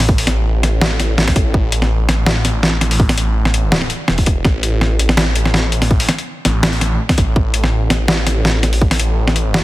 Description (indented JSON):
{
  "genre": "half-time drum and bass",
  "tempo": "165 BPM",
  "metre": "4/4",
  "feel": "swing 53% on 16ths, half-time",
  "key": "unclear",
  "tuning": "A4 = 440 Hz",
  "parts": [
    { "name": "phased detuned saw bass", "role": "bass", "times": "0.0-9.6 s", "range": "E1 to A1", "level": "-16 LUFS", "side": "equal", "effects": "phaser" },
    { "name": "boom bap sampler-style drum kit", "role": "drums", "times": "0.0-9.6 s", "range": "hi-hat, snare drum", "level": "-16 LUFS", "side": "equal", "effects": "studio reverb" },
    { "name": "electronic kick drum", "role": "drums", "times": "0.1-8.9 s", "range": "none", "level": "-14 LUFS", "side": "equal", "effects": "studio reverb" }
  ],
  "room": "little or no reverb",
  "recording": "heavily compressed radio sound, multiband compression",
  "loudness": "-13 LUFS",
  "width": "side -17 dB against mid",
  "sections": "0.0-9.6 A section",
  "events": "none",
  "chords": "none",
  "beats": "| 0.09 0.45 0.81 1.18 | 1.54 1.91 2.27 2.63 | 3.00 3.36 3.72 4.09 | 4.45 4.81 5.18 5.54 | 5.91 6.27 6.63 7.00 | 7.36 7.72 8.09 8.45 | 8.81 9.18 9.54"
}